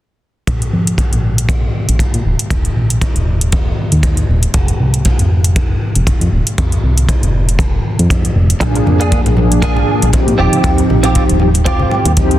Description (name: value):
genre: nu-disco, nu disco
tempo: 118 BPM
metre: 4/4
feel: swing 56% on 16ths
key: unclear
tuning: A4 = 440 Hz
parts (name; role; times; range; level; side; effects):
- fat analog bass; bass; 0.5-12.4 s; Eb1 to Bb2; -14 LUFS; equal; none
- electronic hi-hat; drums; 0.5-12.4 s; none; -21 LUFS; right 1 dB; overdrive
- kick drum; drums; 0.5-12.3 s; none; -15 LUFS; equal; none
- mellow synth brass; accompaniment; 8.6-12.4 s; F3 to Ab4; -15 LUFS; equal; chorus, sidechain pumping, tape echo
- direct-recorded clean electric guitar; riff; 8.6-12.1 s; Bb3 to Ab4; -18 LUFS; right 3 dB; ensemble chorus, tape echo
- congas; percussion; 8.6-12.1 s; none; -24 LUFS; left 4 dB; none
room: little or no reverb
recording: dense, heavily limited modern master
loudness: -11 LUFS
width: side -14 dB against mid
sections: 0.5-12.4 A section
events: filter sweep on analog synth bass 0.5-12.4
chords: 0.5 Bb5; 2.3 Eb5; 4.5 F5; 8.6 Bb7; 10.4 Eb69